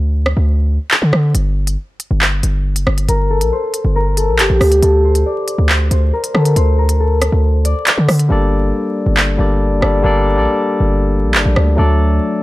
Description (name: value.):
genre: hip hop, drill.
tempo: 138 BPM.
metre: 4/4.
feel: half-time.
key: G harmonic minor.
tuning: A4 = 440 Hz.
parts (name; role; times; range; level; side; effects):
hard-hitting 808-style bass; bass; 0.0-12.2 s; F#1 to D3; -14 LUFS; equal; none.
drill drum kit; drums; 0.3-11.7 s; handclaps, hi-hat, rim click; -16 LUFS; equal; none.
concert harp; melody; 3.1-9.5 s; G4 to D5; -17 LUFS; left 1 dB; low-pass filter.
barky tine electric piano; accompaniment; 8.3-12.4 s; F#3 to D5; -16 LUFS; left 2 dB; overdrive, low-pass filter.
room: digital ambience.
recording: dark, warm production, vinyl crackle.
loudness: -12 LUFS.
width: side -17 dB against mid.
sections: 0.0-12.4 A section.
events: break 0.0-3.1; hi-hats muted 8.3-12.4.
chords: 0.0 N.C.; 4.8 D5; 8.3 Gmadd9; 11.8 D.